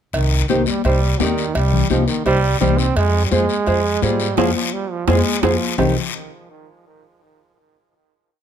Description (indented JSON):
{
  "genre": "latin, cumbia",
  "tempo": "170 BPM",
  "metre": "4/4",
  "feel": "straight",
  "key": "C minor",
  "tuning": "A4 = 438 Hz",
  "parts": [
    { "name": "bright trombone", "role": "second line", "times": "0.1-5.9 s", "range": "Eb3 to C4", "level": "-22 LUFS", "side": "right 6 dB", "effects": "tape echo" },
    { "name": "upright bass", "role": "bass", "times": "0.1-5.9 s", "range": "C2 to Ab2", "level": "-19 LUFS", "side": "equal", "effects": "none" },
    { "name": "cowbell and timbales", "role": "percussion", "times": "0.1-5.9 s", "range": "none", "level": "-25 LUFS", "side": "right 5 dB", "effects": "none" },
    { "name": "guiro", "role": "percussion", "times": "0.1-5.9 s", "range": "none", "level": "-28 LUFS", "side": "left 9 dB", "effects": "none" },
    { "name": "nylon-string guitar", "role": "accompaniment", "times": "0.5-5.9 s", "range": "Eb4 to D5", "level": "-21 LUFS", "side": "right 1 dB", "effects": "none" },
    { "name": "congas", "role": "percussion", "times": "0.5-5.9 s", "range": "none", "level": "-23 LUFS", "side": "left 11 dB", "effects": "none" }
  ],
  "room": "light reverb",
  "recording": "close, detailed microphones",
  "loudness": "-15 LUFS",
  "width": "side -9 dB against mid",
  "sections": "0.1-5.8 groove; 5.8-7.2 final chord",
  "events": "band accent 4.4-5.8; drum fill 4.9-5.8",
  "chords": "0.1 Cm; 3.0 Fm; 5.8 Cm"
}